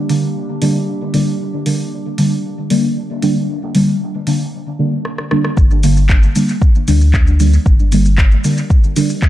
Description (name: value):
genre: dub techno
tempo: 115 BPM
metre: 4/4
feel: straight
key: G minor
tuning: A4 = 440 Hz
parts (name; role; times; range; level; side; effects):
- warbly tape-like pad; sustained chords; 0.0-4.5 s; G3 to G4; -25 LUFS; right 3 dB; chorus, built-in reverb, sidechain pumping
- deep mellow chord stab; stabs; 0.1-9.1 s; D3 to D4; -16 LUFS; equal; chorus, phaser, sidechain pumping, dub echo
- punchy analog drum machine; drums; 0.1-9.3 s; handclaps, hi-hat, rim click, shaker; -24 LUFS; equal; dub echo
- warm sub bass; bass; 5.6-8.4 s; G1 to D2; -12 LUFS; equal; sidechain pumping
- electronic kick drum; drums; 5.6-9.3 s; none; -11 LUFS; equal; none
room: light reverb, digital ambience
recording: dark, warm production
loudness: -12 LUFS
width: side -14 dB against mid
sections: 0.0-5.6 A section; 5.6-9.3 B section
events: drum fill 5.1-5.6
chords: 0.0 Gm